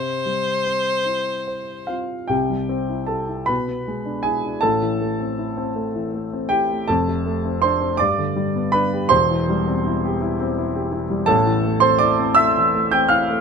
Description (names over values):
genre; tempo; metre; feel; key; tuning
classical, romantic duo for violin and grand piano; 47-57 BPM (dotted quarters); 6/8; rubato; C major; A4 = 441 Hz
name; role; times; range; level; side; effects
warm violin; melody; 0.0-1.9 s; C5; -22 LUFS; left 2 dB; none
warm grand piano; accompaniment; 0.0-13.4 s; E1 to G6; -18 LUFS; right 1 dB; none
room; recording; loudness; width
little or no reverb; close, detailed microphones; -18 LUFS; side -5 dB against mid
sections
0.0-2.3 A section; 2.3-13.4 B section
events
none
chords
0.0 C; 3.5 E7/B; 4.6 Am; 6.9 Dm7/F; 8.0 G; 9.1 C/E; 11.3 Am